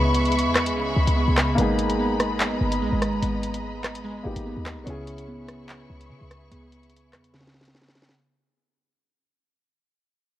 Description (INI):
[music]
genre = hip hop, drill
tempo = 146 BPM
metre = 4/4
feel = half-time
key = unclear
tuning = A4 = 440 Hz
[part]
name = warm concert grand piano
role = accompaniment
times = 0.0-8.2 s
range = A#3 to G#4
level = -30 LUFS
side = left 1 dB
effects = none
[part]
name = warm studio string section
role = sustained chords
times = 0.0-8.1 s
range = G#3 to C#6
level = -28 LUFS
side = left 1 dB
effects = none
[part]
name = glassy digital keys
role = arpeggios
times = 0.0-8.2 s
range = C#3 to B3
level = -28 LUFS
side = right 2 dB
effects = chorus, ping-pong delay
[part]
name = short 808-style bass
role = bass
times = 0.0-7.7 s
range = G1 to C#3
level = -26 LUFS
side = equal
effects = none
[part]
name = drill drum kit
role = drums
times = 0.1-8.2 s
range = handclaps, hi-hat, rim click, snare drum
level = -26 LUFS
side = equal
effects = none
[sound]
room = light reverb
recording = worn, warbling old tape, cassette tape, vinyl crackle, warbly pitch drift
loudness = -21 LUFS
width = side -13 dB against mid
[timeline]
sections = 0.0-8.2 A section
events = fade-out 0.0-8.2; drum fill 7.3-8.2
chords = 0.0 C#m7; 1.6 G#madd9; 4.9 C#m7